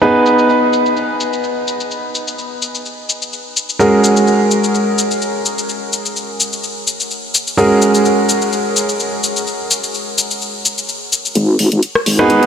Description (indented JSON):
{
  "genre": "bass house",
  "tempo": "127 BPM",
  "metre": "4/4",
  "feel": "swing 54% on 16ths",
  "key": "unclear",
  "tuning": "A4 = 440 Hz",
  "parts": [
    { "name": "warm grand piano", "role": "stabs", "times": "0.0-12.5 s", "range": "G#3 to B4", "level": "-14 LUFS", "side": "right 1 dB", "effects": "vintage 12-bit sampler grit, analog delay" },
    { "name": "garage drum kit", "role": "drums", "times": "0.0-12.5 s", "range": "cabasa, hi-hat, rim click", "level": "-18 LUFS", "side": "left 3 dB", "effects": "low-pass filter on snare, studio reverb, low-pass filter on hats, low-pass filter on perc, low-pass filter on toms, low-pass filter on cymbals" },
    { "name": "vowel-sweep wobble bass", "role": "bass", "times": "11.4-12.5 s", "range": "G#1", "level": "-13 LUFS", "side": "left 1 dB", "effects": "chorus, tube saturation, high-pass filter" }
  ],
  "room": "wet huge ambient reverb, RT60 6.8 s",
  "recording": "dreamy mix soaked in reverb",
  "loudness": "-13 LUFS",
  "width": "side -8 dB against mid",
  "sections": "0.0-11.4 A section; 11.4-12.5 B section",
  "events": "build-up 11.4-12.5",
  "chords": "0.0 G#m; 3.8 F#add9/G#; 11.4 G#m"
}